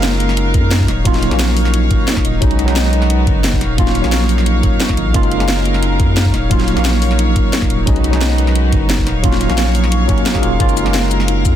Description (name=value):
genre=liquid drum and bass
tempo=176 BPM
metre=4/4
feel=straight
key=Eb minor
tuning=A4 = 442 Hz
part: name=tine electric piano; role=accompaniment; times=0.0-11.6 s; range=Gb3 to F5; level=-19 LUFS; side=right 1 dB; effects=overdrive, fast stereo tremolo, tape echo
part: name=rich studio string section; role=sustained chords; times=0.0-11.6 s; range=Gb3 to F5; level=-22 LUFS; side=equal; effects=sidechain pumping
part: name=buzzing kalimba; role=arpeggios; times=0.0-11.6 s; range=Bb3 to Eb5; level=-25 LUFS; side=left 4 dB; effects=tape echo
part: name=saturated sub bass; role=bass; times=0.0-11.6 s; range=Eb1 to Gb2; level=-16 LUFS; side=equal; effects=none
part: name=garage drum kit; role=drums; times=0.0-11.5 s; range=hi-hat, shaker, snare drum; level=-21 LUFS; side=left 1 dB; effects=none
part: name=electronic kick drum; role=drums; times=0.5-11.5 s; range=none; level=-16 LUFS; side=equal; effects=none
room=little or no reverb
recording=dense, heavily limited modern master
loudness=-12 LUFS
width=side -10 dB against mid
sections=0.0-11.6 A section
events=none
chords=0.0 Gbmaj9; 0.9 Ebm9; 2.4 B6; 3.6 Ebm9; 5.1 Gbmaj9; 6.3 Ebm9; 7.9 B6; 9.1 Ebm9; 10.6 Gbmaj9